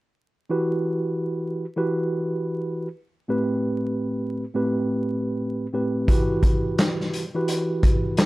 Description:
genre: hip hop, boom-bap hip-hop.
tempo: 86 BPM.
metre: 4/4.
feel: swing 62% on 16ths.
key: E minor.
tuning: A4 = 438 Hz.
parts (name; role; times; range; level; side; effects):
mellow tine electric piano; accompaniment; 0.5-8.3 s; A2 to B4; -24 LUFS; right 1 dB; medium stereo tremolo, high-pass filter, low-pass filter.
vintage drum kit; drums; 6.1-8.3 s; handclaps, hi-hat, kick drum, snare drum; -20 LUFS; equal; none.
room: light reverb.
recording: dark, warm production, vinyl crackle.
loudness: -22 LUFS.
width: side -19 dB against mid.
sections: 0.5-8.3 A section.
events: none.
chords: 0.5 Emadd9; 3.3 Am7; 6.1 Emadd9.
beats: | 0.50 1.20 1.90 2.60 | 3.29 3.99 4.69 5.39 | 6.08 6.78 7.48 8.18.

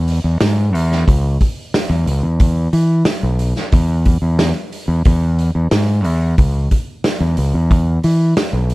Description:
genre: psychedelic rock.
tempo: 90 BPM.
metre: 4/4.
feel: straight.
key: E major.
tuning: A4 = 440 Hz.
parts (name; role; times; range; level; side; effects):
growling fingered electric bass; bass; 0.0-8.7 s; B1 to E3; -14 LUFS; equal; overdrive.
vintage drum kit; drums; 0.1-8.7 s; hi-hat, kick drum, snare drum; -17 LUFS; equal; none.
room: little or no reverb.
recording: none.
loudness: -13 LUFS.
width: side -20 dB against mid.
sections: 0.0-8.7 A section.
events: none.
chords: none.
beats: 0.41 | 1.08 1.74 2.40 3.06 | 3.73 4.39 5.05 5.71 | 6.38 7.04 7.70 8.37.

